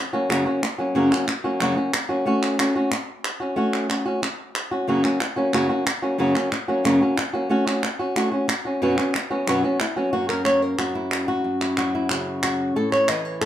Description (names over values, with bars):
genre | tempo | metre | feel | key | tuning
flamenco | 183 BPM | 4/4 | straight | unclear | A4 = 438 Hz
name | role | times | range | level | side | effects
flamenco guitar | melody | 0.1-13.5 s | F#2 to D#5 | -21 LUFS | equal | plate reverb
palmas hand claps | percussion | 0.3-13.5 s | none | -27 LUFS | right 1 dB | none
room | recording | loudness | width
moderate studio reverb, RT60 0.8 s | none | -20 LUFS | side -11 dB against mid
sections
0.0-10.1 A section; 10.1-13.5 B section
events
none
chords
0.0 F#; 2.3 A6; 4.9 F#; 7.5 A6; 8.8 F#sus4; 10.1 F#; 12.8 A